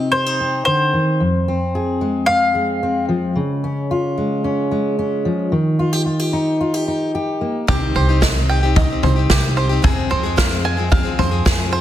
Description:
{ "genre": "indie folk with a building arrangement", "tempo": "111 BPM", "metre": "4/4", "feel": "straight", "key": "C minor", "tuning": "A4 = 444 Hz", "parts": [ { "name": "mandolin", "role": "melody", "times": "0.0-3.0 s", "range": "C5 to F5", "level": "-18 LUFS", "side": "left 1 dB", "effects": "none" }, { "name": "fingerpicked steel-string acoustic guitar", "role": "accompaniment", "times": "0.0-9.8 s", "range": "F2 to Ab4", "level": "-19 LUFS", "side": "left 1 dB", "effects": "none" }, { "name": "picked plugged-in steel-string acoustic guitar", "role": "accompaniment", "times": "7.7-11.8 s", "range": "F2 to Ab4", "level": "-23 LUFS", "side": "left 6 dB", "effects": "none" }, { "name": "bluegrass banjo", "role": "arpeggios", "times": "7.7-11.8 s", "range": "G4 to Ab5", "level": "-23 LUFS", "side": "right 5 dB", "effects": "none" }, { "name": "upright bass", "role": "bass", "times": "7.7-11.8 s", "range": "C2 to F2", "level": "-19 LUFS", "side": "right 1 dB", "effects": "none" }, { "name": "natural country drum kit", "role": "drums", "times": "7.7-11.6 s", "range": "kick drum, snare drum, toms", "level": "-18 LUFS", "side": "equal", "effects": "none" } ], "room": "moderate recital hall reverb, RT60 1.6 s, small room ambience", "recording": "dense, heavily limited modern master", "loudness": "-16 LUFS", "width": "side -12 dB against mid", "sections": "0.0-7.7 A section; 7.7-11.8 B section", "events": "build-up 7.7-11.8; drum fill 7.7-11.8", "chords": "0.0 Cm; 1.2 Fm; 3.4 Db; 5.5 Eb; 7.7 Cm; 9.8 Fm" }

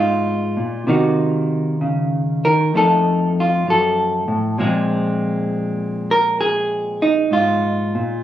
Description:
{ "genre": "solo jazz", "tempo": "65 BPM", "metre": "4/4", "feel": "swing 68% on 8ths, rubato", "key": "unclear", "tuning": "A4 = 440 Hz", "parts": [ { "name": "hollow-body jazz guitar", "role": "solo", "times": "0.0-8.2 s", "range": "F2 to Bb4", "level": "-16 LUFS", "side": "equal", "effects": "none" } ], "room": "light reverb", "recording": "recorded on a phone in the room, studio ambience, compression", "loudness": "-16 LUFS", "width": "side -12 dB against mid", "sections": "0.0-8.2 A section", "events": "none", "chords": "0.0 Fm7; 0.9 Cm7b5; 2.7 F7b9; 4.6 Bbsus2" }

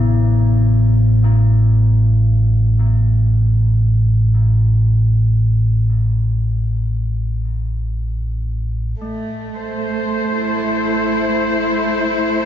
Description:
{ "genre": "dark ambient drone", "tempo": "free time", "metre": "none", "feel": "none", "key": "A minor", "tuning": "A4 = 440 Hz", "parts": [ { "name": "gamelan-type bronze metallophone", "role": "arpeggios", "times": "0.0-12.5 s", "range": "A3 to C5", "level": "-28 LUFS", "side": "left 4 dB", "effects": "tape echo" }, { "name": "deep rumbling drone", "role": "drone", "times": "0.0-12.5 s", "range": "A1 to A2", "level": "-14 LUFS", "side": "equal", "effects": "built-in reverb" }, { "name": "warm studio cello section", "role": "sustained chords", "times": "9.0-12.5 s", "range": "A3 to C5", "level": "-17 LUFS", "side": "equal", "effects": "none" } ], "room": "wet cathedral reverb, RT60 5.5 s", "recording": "in a vast, echoing space, nothing above 7.5 kHz", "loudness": "-14 LUFS", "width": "side -11 dB against mid", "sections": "0.0-9.0 A section; 9.0-12.5 A section", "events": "fade-out on bronze metallophone 0.0-9.0", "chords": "0.0 Am" }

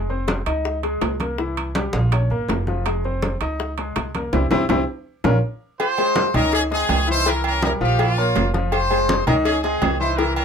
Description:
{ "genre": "latin, salsa", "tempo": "164 BPM", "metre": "4/4", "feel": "straight", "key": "F minor", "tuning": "A4 = 445 Hz", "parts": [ { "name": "clear baby grand piano", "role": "accompaniment", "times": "0.0-10.4 s", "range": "Eb3 to F5", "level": "-23 LUFS", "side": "left 2 dB", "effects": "none" }, { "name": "upright bass", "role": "bass", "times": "0.0-10.4 s", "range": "F1 to Db2", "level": "-24 LUFS", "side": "right 1 dB", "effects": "none" }, { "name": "congas", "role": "percussion", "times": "0.1-10.4 s", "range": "none", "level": "-26 LUFS", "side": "left 1 dB", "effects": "none" }, { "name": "bongos and cowbell", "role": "percussion", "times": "0.3-10.4 s", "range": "none", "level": "-28 LUFS", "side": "left 6 dB", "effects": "none" }, { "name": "timbales and agogo bells", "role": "percussion", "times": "0.3-10.4 s", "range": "none", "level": "-27 LUFS", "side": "right 7 dB", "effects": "none" }, { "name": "brilliant horn section", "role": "melody", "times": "5.8-10.4 s", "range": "Bb3 to C5", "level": "-22 LUFS", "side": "left 1 dB", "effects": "none" } ], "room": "light reverb", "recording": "minimal, uncompressed stereo recording", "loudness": "-18 LUFS", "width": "side -7 dB against mid", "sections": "0.0-5.8 A section; 5.8-10.4 B section", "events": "band accent 4.3-5.8; drum fill 4.7-5.8", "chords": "0.0 F5; 0.7 Dbsus2; 1.4 C7; 2.1 Bbm; 2.9 Fm; 3.6 Dbsus2; 4.3 C; 5.1 Bbm; 5.8 Fm; 6.5 Dbsus2; 7.3 C7; 8.0 Bbm; 8.7 Fm; 9.5 Dbsus2" }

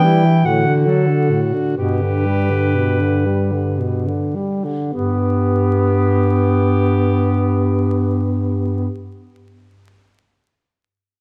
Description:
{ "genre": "classical, lyrical piece for single-reed quartet", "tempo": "34-50 BPM (dotted quarters)", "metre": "6/8", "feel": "rubato", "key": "G major", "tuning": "A4 = 440 Hz", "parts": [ { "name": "bright clarinet", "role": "melody", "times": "0.0-8.9 s", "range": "G4 to G5", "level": "-26 LUFS", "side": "equal", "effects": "none" }, { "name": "bright alto saxophone", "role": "second line", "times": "0.0-8.9 s", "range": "E4 to G4", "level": "-27 LUFS", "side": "equal", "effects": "none" }, { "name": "mellow tenor saxophone", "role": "accompaniment", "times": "0.0-8.9 s", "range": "A2 to B3", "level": "-23 LUFS", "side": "equal", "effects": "none" }, { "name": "warm bass clarinet", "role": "bass", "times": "0.0-8.9 s", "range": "G2 to E3", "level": "-20 LUFS", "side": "equal", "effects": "none" } ], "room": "wet recital hall reverb, RT60 1.8 s", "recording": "dark, warm production, vinyl crackle", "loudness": "-17 LUFS", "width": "mono", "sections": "0.0-4.9 A section; 4.9-8.3 B section", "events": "slowing down 0.0-4.9", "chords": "0.4 D/A; 1.8 G" }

